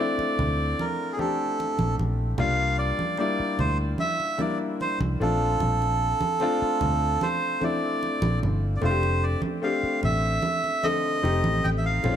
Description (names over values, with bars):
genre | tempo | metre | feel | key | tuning
lush 1970s-style soul | 75 BPM | 4/4 | straight | F major | A4 = 438 Hz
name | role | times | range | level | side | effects
melodica | melody | 0.0-12.2 s | Ab4 to G5 | -27 LUFS | right 2 dB | slapback echo
clear concert grand piano | accompaniment | 0.0-12.2 s | D3 to A4 | -28 LUFS | left 3 dB | none
vintage muted fingered electric bass | bass | 0.2-12.2 s | F1 to D2 | -26 LUFS | equal | none
congas | percussion | 0.2-12.2 s | none | -32 LUFS | right 4 dB | none
room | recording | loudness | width
light reverb | none | -22 LUFS | side -9 dB against mid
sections
0.0-12.2 A section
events
none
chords
0.0 Bbmaj7; 2.4 C7sus4; 5.2 Bbmaj7; 8.8 F69; 11.2 F7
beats
0.78 1.59 | 2.39 3.19 4.00 4.80 | 5.61 6.41 7.21 8.02 | 8.82 9.63 10.44 11.24 | 12.05